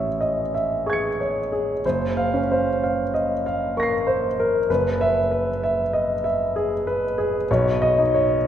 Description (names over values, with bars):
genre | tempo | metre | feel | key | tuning
classical, impressionist solo piano | 58-66 BPM | 3/4 | rubato | unclear | A4 = 439 Hz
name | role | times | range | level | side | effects
clear grand piano | solo | 0.0-8.5 s | Gb1 to C#7 | -20 LUFS | equal | none
room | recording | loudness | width
wet concert hall reverb, RT60 1.9 s | heard from further back in the room | -20 LUFS | side -10 dB against mid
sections
0.0-8.5 A section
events
none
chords
0.0 Amaj7; 1.8 Gbmaj7#11; 4.7 Eadd9/F#; 7.5 Cbadd9